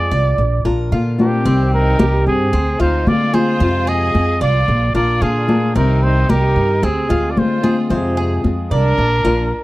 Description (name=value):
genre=latin, Cuban son and guajira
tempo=112 BPM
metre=4/4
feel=straight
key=unclear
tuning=A4 = 441 Hz
part: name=breathy trumpet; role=melody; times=0.0-9.6 s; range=G4 to Eb5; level=-20 LUFS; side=equal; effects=none
part: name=flamenco guitar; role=accompaniment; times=0.0-9.5 s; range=C3 to G4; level=-22 LUFS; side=left 3 dB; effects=none
part: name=Cuban tres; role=arpeggios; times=0.0-9.5 s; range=C4 to D5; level=-24 LUFS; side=right 3 dB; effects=none
part: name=upright bass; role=bass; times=0.0-9.5 s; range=Bb1 to D3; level=-17 LUFS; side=equal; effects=none
part: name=congas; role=percussion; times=0.4-9.5 s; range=none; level=-19 LUFS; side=left 2 dB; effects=none
part: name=rich studio violin section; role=second line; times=1.2-9.6 s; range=C4 to Ab4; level=-26 LUFS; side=equal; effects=none
room=little or no reverb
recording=dry, close 1970s-style studio recording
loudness=-13 LUFS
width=side -18 dB against mid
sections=0.0-9.6 A section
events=none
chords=0.4 Bb; 1.5 Cm; 2.5 Dm7b5; 3.6 Fm; 4.7 Bb; 5.8 Cm; 6.8 Dm7b5; 7.9 Fm; 9.0 Bb